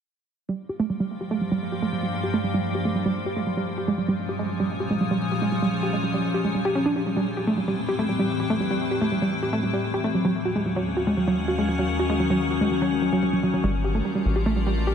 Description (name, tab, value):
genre	IDM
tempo	146 BPM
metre	4/4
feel	straight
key	unclear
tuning	A4 = 440 Hz
part	icy glass pad	sustained chords	1.2-14.9 s	Eb2 to Bb4	-26 LUFS	left 3 dB	chorus, built-in reverb
part	warbly dusty pluck	arpeggios	0.5-14.9 s	Gb3 to G4	-24 LUFS	right 2 dB	chorus, cassette tape, dub echo
part	rubbery square bass	bass	13.6-14.9 s	G1 to A1	-24 LUFS	left 1 dB	none
room	moderate lush hall reverb, RT60 3.0 s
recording	none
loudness	-22 LUFS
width	side -7 dB against mid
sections	0.5-13.6 A section; 13.6-14.9 B section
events	filter sweep on synth arpeggio sound 0.5-13.6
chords	0.5 Gm7; 3.8 Bbm7; 6.9 Am7; 10.1 Ebm7; 13.6 Gm7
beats	| 0.49 0.90 1.31 1.72 | 2.13 2.54 2.95 3.37 | 3.78 4.19 4.60 5.01 | 5.42 5.83 6.24 6.65 | 7.06 7.47 7.88 8.30 | 8.71 9.12 9.53 9.94 | 10.35 10.76 11.17 11.58 | 11.99 12.41 12.82 13.23 | 13.64 14.05 14.46 14.87